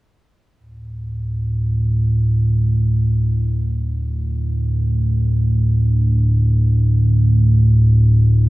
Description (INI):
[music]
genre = ambient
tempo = free time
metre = none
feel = none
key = unclear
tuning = A4 = 440 Hz
[part]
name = deep rumbling drone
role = solo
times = 0.8-8.5 s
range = D2 to A2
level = -14 LUFS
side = equal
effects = built-in reverb
[sound]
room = wet cathedral reverb, RT60 5.3 s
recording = studio reverb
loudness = -14 LUFS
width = side -19 dB against mid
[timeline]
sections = 0.6-8.5 A section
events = none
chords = 0.6 D5